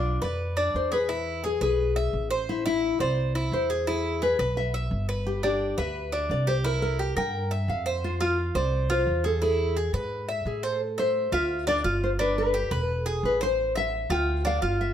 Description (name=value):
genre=latin, Cuban son and guajira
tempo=173 BPM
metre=4/4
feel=straight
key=A minor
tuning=A4 = 440 Hz
part: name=nylon-string guitar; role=melody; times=0.0-14.9 s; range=E4 to G5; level=-28 LUFS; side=left 2 dB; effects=plate reverb
part: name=Cuban tres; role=arpeggios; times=0.0-14.9 s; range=D4 to E5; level=-29 LUFS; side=right 1 dB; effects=none
part: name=upright bass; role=bass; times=0.0-14.9 s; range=E1 to A2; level=-29 LUFS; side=equal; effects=none
room=moderate studio reverb, RT60 0.8 s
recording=none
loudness=-24 LUFS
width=side -10 dB against mid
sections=0.0-10.8 A section; 10.8-14.9 B section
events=none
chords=0.0 Bdim; 1.1 E; 2.5 Am; 3.9 E; 5.3 G; 6.6 C7; 8.0 F5; 9.4 E; 10.8 Am; 11.5 Dm; 12.2 G; 12.9 E; 13.6 Am; 14.3 Dm